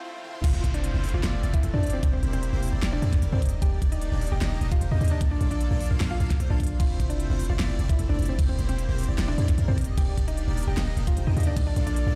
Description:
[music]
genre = future bass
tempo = 151 BPM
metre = 4/4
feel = half-time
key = F major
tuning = A4 = 441 Hz
[part]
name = big bright polysynth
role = riff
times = 0.0-12.2 s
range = A3 to F5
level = -39 LUFS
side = equal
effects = lush chorus, sidechain pumping
[part]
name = riser, swell and downlifter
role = sound effects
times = 0.0-3.6 s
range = none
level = -44 LUFS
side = equal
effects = none
[part]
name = pop drum kit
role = drums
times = 0.1-12.0 s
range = crash cymbal, hi-hat, snare drum, toms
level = -38 LUFS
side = equal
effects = studio reverb
[part]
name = mallet-like synth pluck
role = melody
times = 0.4-12.1 s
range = C4 to G5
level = -38 LUFS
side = equal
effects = analog chorus, sidechain pumping, tape echo
[part]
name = airy dreamy lead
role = arpeggios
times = 0.4-12.2 s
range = A4 to F5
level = -44 LUFS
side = equal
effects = chorus, sidechain pumping
[part]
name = warm 808-style bass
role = bass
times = 0.4-12.2 s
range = Eb1 to F2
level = -27 LUFS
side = equal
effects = sidechain pumping
[part]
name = electronic kick drum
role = drums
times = 0.4-11.6 s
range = none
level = -26 LUFS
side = equal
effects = studio reverb
[sound]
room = little or no reverb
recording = played on a big sound system in a bare room, large studio reverb, high-pass filter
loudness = -25 LUFS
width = mono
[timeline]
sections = 0.4-12.2 A section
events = break 0.0-0.4; riser 0.0-0.4; swell 0.0-0.4; drum fill 0.1; drop 0.4-12.2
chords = 0.4 Fmaj7; 2.0 C7/E; 3.4 Ebmaj7; 5.2 Bbmaj7; 6.8 Fmaj7; 8.4 C7/E; 9.8 Ebmaj7; 11.6 Bbmaj7

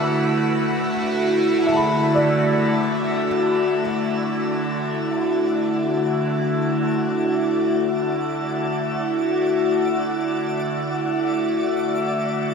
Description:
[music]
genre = ambient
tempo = free time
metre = none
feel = none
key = D major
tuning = A4 = 440 Hz
[part]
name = evolving wavetable pad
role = sustained chords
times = 0.0-12.5 s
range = D3 to F#4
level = -19 LUFS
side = equal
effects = phaser, built-in reverb
[part]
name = felt-muted upright piano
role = arpeggios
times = 0.0-3.8 s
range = D5 to E6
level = -27 LUFS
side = equal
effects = diffuse ambient delay
[part]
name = twinkling granular texture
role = texture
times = 0.0-12.5 s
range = B4 to D6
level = -36 LUFS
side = equal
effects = built-in reverb
[sound]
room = wet shimmer reverb, RT60 8.1 s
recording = none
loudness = -19 LUFS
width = side -5 dB against mid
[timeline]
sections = 0.0-3.3 A section; 3.3-12.5 B section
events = fade-in on synth texture 3.3-12.5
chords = 0.0 Dadd9

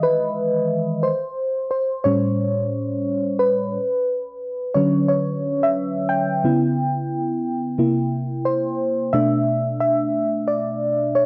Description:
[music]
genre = R&B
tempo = 89 BPM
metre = 4/4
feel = swing 63% on 16ths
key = unclear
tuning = A4 = 443 Hz
[part]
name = mellow FM electric piano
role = solo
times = 0.0-11.3 s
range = A2 to G5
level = -21 LUFS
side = equal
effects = chorus, cassette tape
[sound]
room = light reverb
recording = home recording on cassette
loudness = -21 LUFS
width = mono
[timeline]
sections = 0.0-11.3 A section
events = FM electric piano solo 0.0-11.3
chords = 0.0 Emaj7; 1.0 A7#9; 3.7 Dmaj7; 6.4 C#m7b5; 7.8 C7; 9.1 Bm7

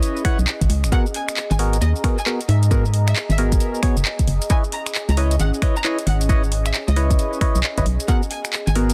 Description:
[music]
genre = UK garage, two-step garage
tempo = 134 BPM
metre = 4/4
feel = swing 63% on 16ths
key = G# minor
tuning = A4 = 439 Hz
[part]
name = percussive organ stab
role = stabs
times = 0.0-8.9 s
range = B3 to F#5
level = -28 LUFS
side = equal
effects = chorus, phaser, dub echo
[part]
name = house drum kit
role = drums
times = 0.0-8.9 s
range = finger snaps, handclaps, hi-hat, shaker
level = -28 LUFS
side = equal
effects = none
[part]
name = airy breathy pad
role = texture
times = 0.0-8.9 s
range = C#4 to A#5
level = -33 LUFS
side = equal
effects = chorus, sidechain pumping
[part]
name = electronic kick drum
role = drums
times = 0.2-8.2 s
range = none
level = -21 LUFS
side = equal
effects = none
[part]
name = organ-like FM bass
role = bass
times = 0.4-8.9 s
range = F#1 to G#2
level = -20 LUFS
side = equal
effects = none
[part]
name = dark studio violin section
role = melody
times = 0.9-8.8 s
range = D#5 to A#5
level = -34 LUFS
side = equal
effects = dub echo
[sound]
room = little or no reverb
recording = dense, heavily limited modern master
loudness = -20 LUFS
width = mono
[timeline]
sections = 0.0-8.9 A section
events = none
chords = 0.0 C#m9; 0.9 G#m9; 4.5 C#m9; 8.1 G#m9

